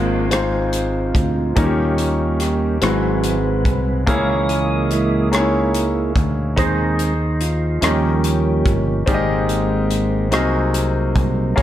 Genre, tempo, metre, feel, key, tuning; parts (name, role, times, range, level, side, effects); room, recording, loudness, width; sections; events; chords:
slow gospel; 48 BPM (dotted quarters); 6/8; straight; Ab major; A4 = 440 Hz
clear grand piano; accompaniment; 0.0-11.6 s; Ab2 to Eb5; -21 LUFS; left 2 dB
percussive tonewheel organ; sustained chords; 0.0-11.6 s; Eb3 to Eb5; -22 LUFS; right 3 dB; fast rotary speaker, chorus vibrato
fingered electric bass; bass; 0.0-11.6 s; G1 to Eb2; -21 LUFS; equal
crisp fusion drum kit; drums; 0.3-11.6 s; hi-hat, kick drum, rim click; -22 LUFS; equal
light reverb, studio reverb; -16 LUFS; side -12 dB against mid
0.0-11.6 A section
tonewheel organ solo 0.0-11.6
0.0 Ab6; 1.6 Eb7; 2.8 Ab7alt; 4.1 Dbm6; 6.6 Ab/Eb; 7.8 Eb7; 9.1 Abmaj7; 10.3 Ab7/C